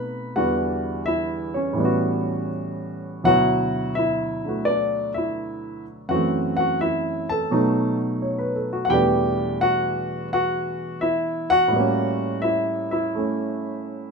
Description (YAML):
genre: solo jazz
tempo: 85 BPM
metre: 4/4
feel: swing 69% on 8ths, rubato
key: D major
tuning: A4 = 438 Hz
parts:
  - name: warm grand piano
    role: solo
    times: 0.0-14.1 s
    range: D2 to B5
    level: -21 LUFS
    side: equal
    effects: none
room: wet studio reverb, RT60 0.6 s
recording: minimal, uncompressed stereo recording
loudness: -20 LUFS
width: side -4 dB against mid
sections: 0.0-3.3 A section; 3.3-14.1 A section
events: none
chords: 0.4 Em7; 1.8 A13; 3.3 D69; 6.1 F#m7b5; 7.5 B7; 8.9 Em11; 11.7 A7b9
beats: | 0.36 1.07 1.80 2.54 | 3.26 3.98 4.69 5.40 | 6.11 6.82 7.52 8.21 | 8.91 9.61 10.32 11.02 | 11.73 12.44 13.15 13.88